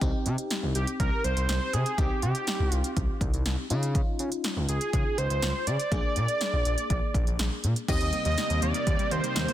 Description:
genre	synth-pop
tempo	122 BPM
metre	4/4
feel	straight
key	unclear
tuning	A4 = 440 Hz
part	FM electric piano	accompaniment	0.0-9.5 s	Bb3 to Ab4	-36 LUFS	left 3 dB	chorus
part	smooth gliding synth bass	bass	0.0-9.5 s	Bb1 to Db3	-28 LUFS	equal	none
part	deep house drum kit	drums	0.0-9.5 s	crash cymbal, hi-hat, kick drum, snare drum	-30 LUFS	equal	none
part	wide unison lead	melody	0.8-9.5 s	G4 to Eb5	-30 LUFS	right 2 dB	digital delay
part	string machine, violins	sustained chords	7.9-9.5 s	C3 to G4	-35 LUFS	equal	ensemble chorus
part	wide unison pluck	arpeggios	7.9-9.5 s	G3 to Bb3	-36 LUFS	right 1 dB	digital delay
room	light reverb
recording	dense, heavily limited modern master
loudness	-25 LUFS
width	side -12 dB against mid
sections	0.0-7.9 A section; 7.9-9.5 B section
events	none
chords	0.0 Cm; 3.7 Dbadd9; 5.9 Bb7; 7.9 Eb6

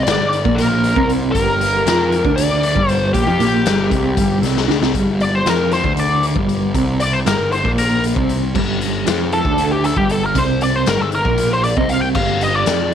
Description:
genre	psychedelic rock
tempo	233 BPM (eighths)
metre	7/8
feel	straight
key	G minor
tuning	A4 = 440 Hz
part	biting lead guitar	melody	0.0-12.9 s	G4 to G5	-19 LUFS	left 1 dB	wah, overdrive, slapback echo
part	mellow electric guitar	riff	0.0-12.9 s	G2 to F4	-19 LUFS	right 1 dB	tremolo, double-tracked left and right
part	fuzz picked electric bass	bass	0.0-12.9 s	G1 to F2	-21 LUFS	right 1 dB	overdrive
part	raw garage drum kit	drums	0.1-12.8 s	crash cymbal, hi-hat, kick drum, snare drum	-22 LUFS	left 3 dB	none
room	light reverb, small room ambience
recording	1960s-style stereo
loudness	-14 LUFS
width	side -9 dB against mid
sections	0.0-4.9 A section; 4.9-12.9 B section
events	drum fill 4.6-4.9; lead electric guitar solo 4.9-12.9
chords	0.0 Gm

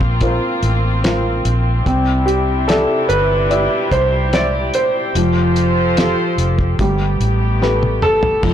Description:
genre	pop ballad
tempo	73 BPM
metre	4/4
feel	straight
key	C major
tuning	A4 = 438 Hz
part	felt-muted upright piano	accompaniment	0.0-8.5 s	F3 to E5	-20 LUFS	equal	none
part	warm studio string section	sustained chords	0.0-8.5 s	C3 to C5	-22 LUFS	left 1 dB	none
part	vintage muted fingered electric bass	bass	0.0-8.5 s	F1 to C2	-18 LUFS	equal	none
part	damped 70s drum kit	drums	0.0-8.5 s	crash cymbal, hi-hat, kick drum, snare drum, toms	-20 LUFS	equal	none
part	warm grand piano	melody	2.3-8.5 s	G4 to D5	-18 LUFS	right 1 dB	plate reverb
room	moderate small room reverb, RT60 0.5 s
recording	blown-out, overdriven recording, overdrive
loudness	-14 LUFS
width	side -10 dB against mid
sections	0.0-8.4 A section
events	drum fill 7.6-8.4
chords	0.0 Bbsus2; 1.9 Cadd9; 5.1 Fadd9; 6.8 Gadd9

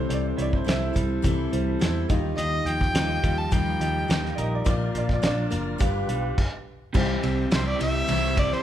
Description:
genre	folk rock and heartland rock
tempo	105 BPM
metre	4/4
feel	straight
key	unclear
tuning	A4 = 441 Hz
part	bright upright piano	second line	0.0-5.8 s	C5 to E5	-32 LUFS	right 2 dB	none
part	picked steel-string acoustic guitar	accompaniment	0.0-8.6 s	Bb2 to C5	-31 LUFS	left 8 dB	none
part	reed electric piano	accompaniment	0.0-8.0 s	C4 to F5	-35 LUFS	right 7 dB	fast tremolo
part	tonewheel organ	sustained chords	0.0-8.6 s	E4 to Eb5	-38 LUFS	left 1 dB	slow rotary speaker, overdrive
part	electric guitar through a small old amp	riff	0.0-8.6 s	G2 to Bb4	-32 LUFS	right 4 dB	spring reverb
part	vintage muted picked electric bass	bass	0.0-8.5 s	F#1 to E2	-28 LUFS	equal	none
part	cloth-damped thuddy drum kit	drums	0.1-8.6 s	crash cymbal, hi-hat, kick drum, ride cymbal, snare drum	-26 LUFS	equal	none
part	rich fiddle	melody	2.4-8.6 s	C5 to A5	-27 LUFS	equal	none
room	moderate recital hall reverb, RT60 1.4 s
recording	recorded in a church or concert hall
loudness	-22 LUFS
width	side -11 dB against mid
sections	0.0-6.9 A section; 6.9-8.6 B section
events	stop 6.4-6.9; fiddle solo 6.9-8.6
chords	0.0 C6; 2.1 Ebadd9; 4.7 Bb; 5.8 G7; 6.9 C

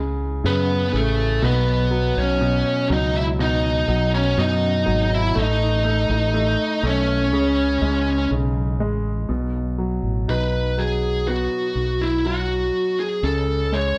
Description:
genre	pop ballad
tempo	61 BPM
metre	4/4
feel	straight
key	unclear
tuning	A4 = 440 Hz
part	clear concert grand piano	accompaniment	0.0-14.0 s	B2 to D#4	-27 LUFS	equal	plate reverb
part	fretless electric bass	bass	0.0-13.9 s	G#1 to F#2	-25 LUFS	equal	ensemble chorus
part	high-gain lead guitar	melody	0.5-14.0 s	A3 to E5	-24 LUFS	equal	distortion, plate reverb
room	light reverb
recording	none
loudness	-21 LUFS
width	mono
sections	0.0-9.3 A section; 9.3-14.0 B section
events	none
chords	0.0 C#5; 1.4 B; 5.4 A; 7.3 C#5; 9.3 B; 13.2 C#5

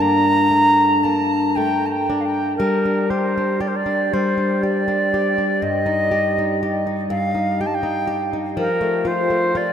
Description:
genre	celtic folk, Celtic slow air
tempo	56-62 BPM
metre	3/4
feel	rubato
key	G minor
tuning	A4 = 440 Hz
part	bright wooden flute	melody	0.0-9.7 s	Bb4 to Bb5	-19 LUFS	right 1 dB	none
part	flamenco guitar	accompaniment	0.0-9.7 s	G2 to G4	-20 LUFS	left 1 dB	none
room	wet huge ambient reverb, RT60 8.3 s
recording	in a vast, echoing space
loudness	-17 LUFS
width	side -8 dB against mid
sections	0.0-2.6 A section; 2.6-9.7 B section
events	none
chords	0.0 Gmadd9; 5.6 F7sus2/G (rootless); 8.6 F

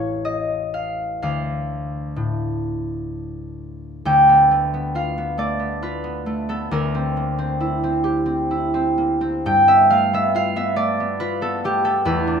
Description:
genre	classical, solo harp piece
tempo	61-72 BPM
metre	3/4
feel	rubato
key	D dorian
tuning	A4 = 440 Hz
part	concert harp	solo	0.0-12.4 s	A1 to G5	-18 LUFS	equal	none
room	wet recital hall reverb, RT60 1.8 s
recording	none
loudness	-18 LUFS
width	side -6 dB against mid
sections	0.0-4.1 A section; 4.1-12.4 A section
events	none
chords	0.0 Aaug7; 1.2 Dm; 4.1 Dm6; 6.7 C9/D; 9.5 G9

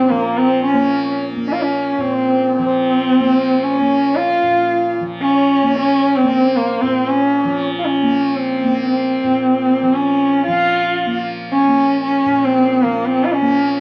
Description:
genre	indian classical, Hindustani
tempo	113 BPM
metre	3/4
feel	straight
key	unclear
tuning	A4 = 437 Hz
part	warm sarangi	melody	0.0-13.8 s	Bb3 to F4	-17 LUFS	equal	plate reverb
part	pedal harmonium	second line	0.0-7.7 s	Bb4 to F5	-26 LUFS	equal	none
part	tanpura	drone	0.0-13.8 s	Bb2 to Bb3	-27 LUFS	equal	none
room	moderate studio reverb, RT60 0.5 s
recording	worn, warbling old tape, cassette tape, warbly pitch drift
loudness	-16 LUFS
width	mono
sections	0.0-10.5 A section; 10.5-13.8 B section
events	speeding up 0.0-13.8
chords	none

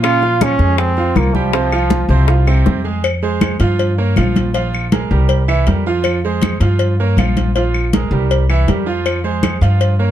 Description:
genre	latin, salsa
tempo	160 BPM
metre	4/4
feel	straight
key	F minor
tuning	A4 = 440 Hz
part	brilliant trombone	melody	0.0-2.7 s	F3 to F4	-18 LUFS	right 2 dB	none
part	bright grand piano	accompaniment	0.0-10.1 s	C3 to Ab5	-20 LUFS	right 6 dB	none
part	upright bass	bass	0.0-10.1 s	Bb1 to Bb2	-15 LUFS	equal	none
part	bongos and cowbell	percussion	0.0-10.0 s	none	-22 LUFS	left 6 dB	none
part	claves	percussion	0.0-9.6 s	none	-26 LUFS	left 5 dB	none
part	congas	percussion	0.0-10.1 s	none	-19 LUFS	left 2 dB	none
room	light reverb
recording	dark, warm production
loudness	-13 LUFS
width	side -11 dB against mid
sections	0.0-3.0 A section; 3.0-10.1 B section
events	none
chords	0.0 Bbm7; 1.5 Csus4; 3.0 Fm; 3.8 Gm7b5; 4.5 Bb5; 5.3 C7; 6.0 Fm; 6.8 Gm7b5; 7.6 Bb5; 8.3 C7; 9.1 Fm

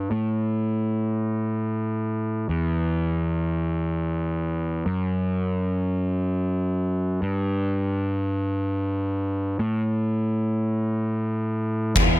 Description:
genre	post-rock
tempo	51 BPM (dotted quarters)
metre	6/8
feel	straight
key	unclear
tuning	A4 = 440 Hz
part	fuzz picked electric bass	bass	0.0-12.2 s	E2 to A2	-23 LUFS	equal	overdrive
part	oversized low-tuned drum kit	drums	12.0-12.1 s	crash cymbal, kick drum	-17 LUFS	equal	none
room	little or no reverb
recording	none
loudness	-23 LUFS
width	side -18 dB against mid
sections	0.0-12.0 A section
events	none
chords	none

